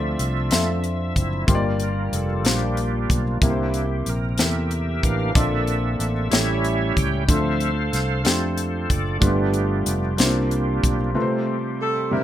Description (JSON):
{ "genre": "slow gospel", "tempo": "62 BPM (dotted quarters)", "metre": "6/8", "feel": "straight", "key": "unclear", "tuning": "A4 = 441 Hz", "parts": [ { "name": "warm concert grand piano", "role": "accompaniment", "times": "0.0-12.2 s", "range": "G2 to E5", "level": "-26 LUFS", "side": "left 1 dB", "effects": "plate reverb" }, { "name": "bright tonewheel organ", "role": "sustained chords", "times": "0.0-12.2 s", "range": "E3 to G5", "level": "-26 LUFS", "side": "right 2 dB", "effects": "fast rotary speaker, overdrive, chorus vibrato, plate reverb" }, { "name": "fingered electric bass", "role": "bass", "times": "0.0-11.1 s", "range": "F1 to F2", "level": "-24 LUFS", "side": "equal", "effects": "none" }, { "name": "crisp fusion drum kit", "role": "drums", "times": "0.2-11.0 s", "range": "hi-hat, kick drum, snare drum", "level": "-22 LUFS", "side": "equal", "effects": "none" }, { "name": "dark saxophone section", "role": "melody", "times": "11.8-12.2 s", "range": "E4 to C5", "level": "-23 LUFS", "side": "right 1 dB", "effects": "none" } ], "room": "moderate studio reverb, RT60 0.6 s", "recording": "rough home demo mix", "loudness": "-19 LUFS", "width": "side -12 dB against mid", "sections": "0.0-12.2 A section", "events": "tonewheel organ solo 0.0-12.2; break 11.2-12.2", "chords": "0.0 Dm7; 1.5 Gm7; 3.4 C7; 5.3 Bbmaj7; 6.3 A7; 7.3 Dm7; 9.2 G7; 10.2 C9sus4; 11.2 F/C" }